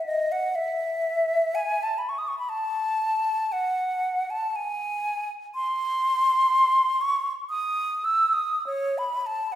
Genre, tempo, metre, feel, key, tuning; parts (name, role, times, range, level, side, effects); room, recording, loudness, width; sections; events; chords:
classical, free, expressive piece for unaccompanied flute; 45-64 BPM; 3/4; rubato; A4 = 440 Hz
hollow concert flute; solo; 0.0-9.6 s; C#5 to E6; -23 LUFS; equal
wet recital hall reverb, RT60 1.8 s; heard from further back in the room; -23 LUFS; side -12 dB against mid
0.0-9.6 A section